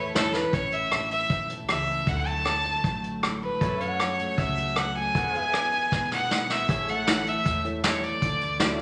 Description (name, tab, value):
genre	honky-tonk and classic country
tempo	156 BPM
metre	4/4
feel	straight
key	A major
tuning	A4 = 439 Hz
part	clear fiddle	second line	0.0-8.8 s	A4 to A5	-29 LUFS	equal	none
part	picked steel-string acoustic guitar	accompaniment	0.0-8.8 s	F#2 to A4	-37 LUFS	equal	none
part	pedal steel guitar	sustained chords	0.0-0.5, 3.6-8.8 s	G#4 to F#5	-39 LUFS	equal	none
part	warm symphonic violin section	sustained chords	0.0-0.5 s	none	barely audible	none	none
part	upright bass	bass	0.0-8.8 s	A1 to F#2	-40 LUFS	equal	none
part	dark baby grand piano	accompaniment	0.1-0.4, 7.1-8.8 s	E4 to D5	-35 LUFS	equal	none
part	vintage brush drum kit	drums	0.2-8.8 s	hi-hat, kick drum, rim click, snare drum	-30 LUFS	equal	none
room	wet large studio reverb, RT60 0.9 s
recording	none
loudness	-26 LUFS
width	mono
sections	0.5-6.7 A section; 6.7-8.8 B section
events	drum fill 0.3, 5.9-6.7; fiddle solo 0.5-6.7, 6.7-8.8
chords	0.0 A; 2.1 Dadd9; 3.6 F#m; 5.1 E; 6.7 A; 8.2 Dadd9